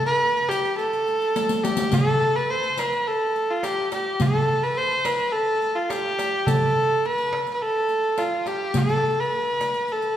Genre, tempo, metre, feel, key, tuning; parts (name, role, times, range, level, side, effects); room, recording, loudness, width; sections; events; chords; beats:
Turkish makam ensemble; 106 BPM; 4/4; straight; A makam ussak; A4 = 440 Hz
clear kamancheh; melody; 0.0-10.2 s; F4 to C5; -21 LUFS; equal
riq; percussion; 0.4-10.1 s; -31 LUFS; left 3 dB
darbuka; percussion; 0.5-10.1 s; -27 LUFS; right 1 dB
wet recital hall reverb, RT60 1.7 s; heard from further back in the room; -20 LUFS; side -10 dB against mid
0.0-10.2 A section
drum fill 1.3-1.9
0.21 0.78 1.35 | 1.92 2.48 3.05 3.62 | 4.19 4.76 5.33 5.90 | 6.46 7.03 7.60 8.17 | 8.74 9.31 9.88